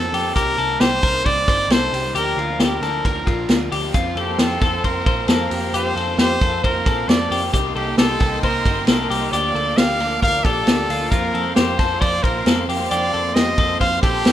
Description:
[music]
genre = jangly indie pop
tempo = 134 BPM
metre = 4/4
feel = straight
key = F mixolydian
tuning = A4 = 439 Hz
[part]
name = bright trumpet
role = melody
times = 0.0-14.3 s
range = G4 to F5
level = -22 LUFS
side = right 1 dB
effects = none
[part]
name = raw garage guitar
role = accompaniment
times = 0.0-14.3 s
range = F2 to Eb4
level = -29 LUFS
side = right 8 dB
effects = overdrive
[part]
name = twelve-string electric guitar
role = arpeggios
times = 0.0-14.3 s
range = F4 to C5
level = -24 LUFS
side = left 6 dB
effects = none
[part]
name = vintage muted picked electric bass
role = bass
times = 0.0-14.3 s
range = G1 to F2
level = -28 LUFS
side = right 1 dB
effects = none
[part]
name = vintage drum kit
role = drums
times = 0.1-14.3 s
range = hi-hat, kick drum, ride cymbal, snare drum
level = -20 LUFS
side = equal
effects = none
[part]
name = clear studio string section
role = sustained chords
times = 4.0-14.3 s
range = Bb3 to D6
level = -29 LUFS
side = equal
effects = none
[sound]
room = moderate studio ambience, RT60 0.5 s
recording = rough home demo mix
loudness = -16 LUFS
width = side -11 dB against mid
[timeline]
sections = 0.0-14.3 A section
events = none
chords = 0.4 Cm7; 2.1 Bb/D; 3.9 Fsus4; 7.5 Cm7; 9.3 Bb/D; 11.1 Fsus4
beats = | 0.36 0.81 1.25 1.70 | 2.15 2.60 3.05 3.50 | 3.94 4.39 4.84 5.29 | 5.74 6.19 6.63 7.08 | 7.53 7.98 8.43 8.88 | 9.32 9.77 10.22 10.67 | 11.12 11.56 12.01 12.46 | 12.91 13.36 13.80 14.25

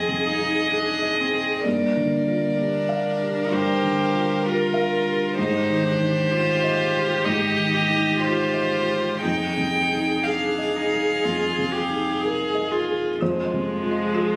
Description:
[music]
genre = neoclassical piano and strings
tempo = 58-65 BPM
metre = 4/4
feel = rubato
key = F dorian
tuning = A4 = 445 Hz
[part]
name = warm violin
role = melody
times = 0.0-14.4 s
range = F4 to G5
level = -27 LUFS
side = equal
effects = none
[part]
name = warm cello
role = second line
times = 0.0-14.4 s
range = F3 to Ab4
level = -30 LUFS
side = equal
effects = none
[part]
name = felt-muted upright piano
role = accompaniment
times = 0.0-14.4 s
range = F2 to F5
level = -28 LUFS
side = equal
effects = none
[part]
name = rich viola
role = accompaniment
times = 0.0-14.4 s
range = Ab3 to Bb4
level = -30 LUFS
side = equal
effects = none
[part]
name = folk marimba with medium hard mallets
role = arpeggios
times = 13.2-14.3 s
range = F4 to Eb5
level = -32 LUFS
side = equal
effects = tape echo
[sound]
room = light reverb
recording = recorded on a phone in the room, studio reverb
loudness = -22 LUFS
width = mono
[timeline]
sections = 0.0-13.2 A section; 13.2-14.4 A section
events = none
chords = 0.0 Fm7; 1.7 Gm7; 5.4 Abmaj7; 9.2 Fm7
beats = 0.71 | 1.65 2.58 3.51 4.44 | 5.37 6.31 7.25 8.21 | 9.23 10.25 11.24 12.23 | 13.21 14.15

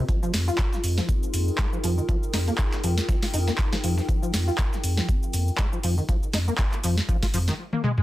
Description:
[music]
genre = acid house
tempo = 120 BPM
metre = 4/4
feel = swing 56% on 16ths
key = unclear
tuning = A4 = 440 Hz
[part]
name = dark analog pad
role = sustained chords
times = 0.0-7.5 s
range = Eb4 to Ab4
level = -37 LUFS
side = left 1 dB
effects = wide subtle chorus, sidechain pumping
[part]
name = acid bass, saw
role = riff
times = 0.0-8.0 s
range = Eb3 to F4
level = -30 LUFS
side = left 1 dB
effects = overdrive, ensemble chorus, sidechain pumping, tape echo
[part]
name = warbly tape-like pad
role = texture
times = 0.0-7.6 s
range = F4 to G5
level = -36 LUFS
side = equal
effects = chorus, built-in reverb, sidechain pumping
[part]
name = booming analog drum machine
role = drums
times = 0.1-8.0 s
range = cabasa, handclaps, hi-hat, snare drum, toms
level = -29 LUFS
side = equal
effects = overdrive
[part]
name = dusty soul sampler-style drum kit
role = drums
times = 0.1-7.6 s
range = hi-hat, snare drum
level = -41 LUFS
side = equal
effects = none
[part]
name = electronic kick drum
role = drums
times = 0.1-7.3 s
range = none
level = -25 LUFS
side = equal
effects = overdrive
[part]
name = saturated sub bass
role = bass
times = 0.3-7.5 s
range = F2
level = -24 LUFS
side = equal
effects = sidechain pumping
[sound]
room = light reverb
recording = dense, heavily limited modern master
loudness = -22 LUFS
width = side -16 dB against mid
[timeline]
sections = 0.0-8.0 A section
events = filter sweep on acid bass 0.0-8.0; drum fill 7.7-8.0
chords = 0.1 Fm7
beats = | 0.09 0.59 1.09 1.59 | 2.09 2.59 3.09 3.59 | 4.09 4.59 5.09 5.59 | 6.09 6.59 7.09 7.59

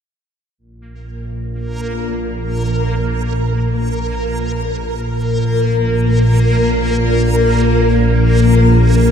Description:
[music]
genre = dark ambient drone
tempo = free time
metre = none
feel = none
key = unclear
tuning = A4 = 438 Hz
[part]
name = bowed-like drone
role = drone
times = 1.1-9.1 s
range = Bb1 to Bb2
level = -14 LUFS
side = equal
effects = built-in reverb, phaser
[part]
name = backwards swelling texture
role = texture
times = 1.6-9.1 s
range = Bb3 to Bb4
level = -19 LUFS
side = equal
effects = built-in reverb
[sound]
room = moderate huge ambient reverb, RT60 8.8 s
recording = dark, warm production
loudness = -13 LUFS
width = side -8 dB against mid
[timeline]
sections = 0.6-9.1 A section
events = none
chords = none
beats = free time

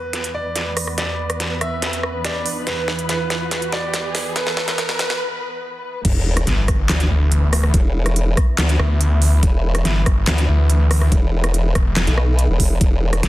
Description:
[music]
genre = heavy wobble dubstep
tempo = 142 BPM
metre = 4/4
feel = half-time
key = unclear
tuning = A4 = 441 Hz
[part]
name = bright baby grand piano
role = melody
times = 0.0-5.2 s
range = B4 to E5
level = -27 LUFS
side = right 2 dB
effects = dub echo
[part]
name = muted studio string section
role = sustained chords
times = 0.0-13.3 s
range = E2 to B4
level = -28 LUFS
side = equal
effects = sidechain pumping, low-pass filter
[part]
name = riser and sub drop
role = sound effects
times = 0.7-7.7 s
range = none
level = -29 LUFS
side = equal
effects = none
[part]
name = dubstep drum kit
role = drums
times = 0.1-13.3 s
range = crash cymbal, handclaps, hi-hat, rim click, snare drum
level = -23 LUFS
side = equal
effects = high-pass filter on hats, studio reverb, high-pass filter on toms, soft clipping on snare, high-pass filter on snare, high-pass filter on cymbals
[part]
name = formant-sweep wobble bass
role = bass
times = 6.0-13.2 s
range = E1 to D2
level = -18 LUFS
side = equal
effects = chorus, overdrive
[part]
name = electronic kick drum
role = drums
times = 6.0-12.9 s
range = none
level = -17 LUFS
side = equal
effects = overdrive, studio reverb
[part]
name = snarling distorted saw bass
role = bass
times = 6.5-13.3 s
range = E1 to D2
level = -16 LUFS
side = equal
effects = distortion, overdrive
[sound]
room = light reverb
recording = dense, heavily limited modern master, high-pass filter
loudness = -16 LUFS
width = side -16 dB against mid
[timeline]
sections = 0.0-6.0 A section; 6.0-13.3 B section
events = build-up 0.0-6.0; drum fill 0.0-5.2; filter sweep on string section 0.0-6.0; riser 0.7-5.2; break 5.2-6.0; drop 6.0-13.3; impact 6.0-7.7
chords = 0.0 E5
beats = 0.13 0.56 | 0.98 1.40 1.82 2.25 | 2.67 3.09 3.51 3.94 | 4.36 4.78 5.20 5.63 | 6.05 6.47 6.89 7.32 | 7.74 8.16 8.58 9.01 | 9.43 9.85 10.27 10.70 | 11.12 11.54 11.96 12.39 | 12.81 13.23

